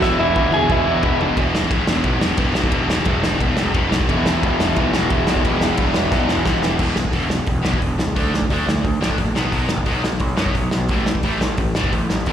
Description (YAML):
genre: punk rock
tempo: 177 BPM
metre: 4/4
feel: straight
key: unclear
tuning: A4 = 441 Hz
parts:
  - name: lightly driven lead guitar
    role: melody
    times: 0.0-1.2 s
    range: E4 to G#5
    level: -19 LUFS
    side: right 1 dB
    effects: slapback echo
  - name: distorted electric guitar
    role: riff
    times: 0.0-12.3 s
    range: E2 to D4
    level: -22 LUFS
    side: left 1 dB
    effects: distortion, slapback echo
  - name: distorted electric guitar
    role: riff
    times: 0.0-1.4, 4.1-6.6, 12.3 s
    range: E2 to E3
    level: -22 LUFS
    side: equal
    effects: distortion, slapback echo
  - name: fuzz picked electric bass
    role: bass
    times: 0.0-12.3 s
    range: E1 to F#2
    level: -22 LUFS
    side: equal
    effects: overdrive
  - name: loose indie drum kit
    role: drums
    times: 0.0-12.3 s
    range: crash cymbal, hi-hat, kick drum, ride cymbal, snare drum, toms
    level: -22 LUFS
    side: equal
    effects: none
room: light reverb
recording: live gig heard through the venue's PA, recital hall reverb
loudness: -16 LUFS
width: side -9 dB against mid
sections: 0.0-1.4 A section; 1.4-6.8 B section; 6.8-12.3 C section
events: drum fill 0.0-1.4, 6.1-6.8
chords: 0.0 E; 6.8 E5; 8.2 D5; 9.4 B5; 10.9 A5